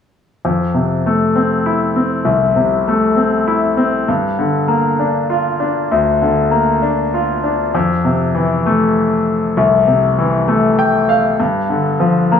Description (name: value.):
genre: pop.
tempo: 66 BPM (dotted quarters).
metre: 6/8.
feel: straight.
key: F major.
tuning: A4 = 439 Hz.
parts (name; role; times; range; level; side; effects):
bright concert grand piano; accompaniment; 0.4-12.4 s; C2 to G5; -13 LUFS; left 2 dB; none.
room: moderate plate reverb, RT60 3.2 s.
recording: small room reverb.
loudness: -13 LUFS.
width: side -7 dB against mid.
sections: 0.4-7.7 A section; 7.7-12.4 B section.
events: grand piano fill 10.5-11.4.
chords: 0.4 Fmaj7; 4.1 Gm7; 7.7 Fmaj7; 11.4 G7(no3).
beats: | 0.43 1.34 | 2.26 3.17 | 4.08 5.00 | 5.91 6.82 | 7.74 8.65 | 9.56 10.47 | 11.39 12.30.